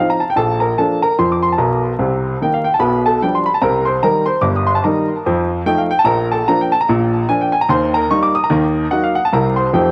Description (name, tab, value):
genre	jazz, stride piano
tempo	148 BPM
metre	4/4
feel	swing 59% on 8ths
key	Bb major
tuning	A4 = 438 Hz
part	clear grand piano	solo	0.0-9.9 s	G1 to Eb6	-16 LUFS	equal	cassette tape, tape echo
room	moderate spring reverb, RT60 1.2 s, studio reverb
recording	home recording on cassette, vinyl crackle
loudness	-16 LUFS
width	mono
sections	0.0-9.9 A section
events	none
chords	0.4 Bb; 2.0 Cm7; 2.8 G7/B; 3.6 Cm7; 5.3 F7; 6.1 Bb; 7.7 Eb; 8.5 Ebm; 9.3 C7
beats	| 0.38 0.79 1.19 1.60 | 2.00 2.41 2.82 3.22 | 3.63 4.04 4.44 4.85 | 5.25 5.66 6.07 6.47 | 6.88 7.29 7.69 8.10 | 8.51 8.91 9.32 9.73